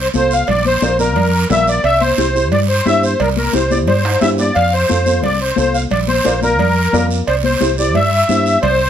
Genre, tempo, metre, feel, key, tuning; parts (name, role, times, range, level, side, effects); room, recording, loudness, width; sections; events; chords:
latin, cumbia; 177 BPM; 4/4; straight; A4 = 444 Hz
musette accordion; melody; 0.0-8.9 s; Bb4 to F5; -16 LUFS; left 2 dB
fingered electric bass; bass; 0.0-8.9 s; Bb1 to G2; -18 LUFS; right 1 dB
dark upright piano; accompaniment; 0.1-8.5 s; E4 to D5; -21 LUFS; right 2 dB
congas; percussion; 0.1-8.8 s; -22 LUFS; left 7 dB
guiro; percussion; 0.1-8.9 s; -26 LUFS; right 6 dB
cowbell and timbales; percussion; 0.5-8.8 s; -22 LUFS; right 9 dB
light reverb; -12 LUFS; side -9 dB against mid
0.0-8.9 A section
drum fill 4.1-4.6
0.5 Bb; 1.8 C; 4.6 F; 5.9 Bb; 7.3 C